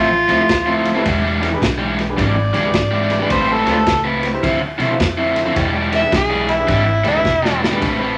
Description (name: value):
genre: electric blues shuffle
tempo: 106 BPM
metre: 4/4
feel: swing 64% on 8ths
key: unclear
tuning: A4 = 440 Hz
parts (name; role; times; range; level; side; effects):
- overdriven harmonica; melody; 0.0-7.6 s; D4 to E5; -20 LUFS; equal; none
- overdriven electric guitar; riff; 0.0-8.2 s; D3 to B4; -21 LUFS; equal; spring reverb
- upright bass; bass; 0.0-8.1 s; E1 to B2; -26 LUFS; equal; none
- clear upright piano; accompaniment; 0.3-7.8 s; D4 to D5; -29 LUFS; equal; none
- crunchy breakbeat drum kit; drums; 0.3-8.0 s; kick drum, ride cymbal, snare drum; -25 LUFS; equal; none
room: moderate large studio reverb, RT60 0.8 s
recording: none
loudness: -17 LUFS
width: mono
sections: 0.0-7.8 A section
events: harmonica solo 0.0-7.8; drum fill 7.3-7.8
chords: 0.0 Fmaj7; 1.1 E7#9; 3.3 Am9; 4.4 Dm9; 5.6 E7#9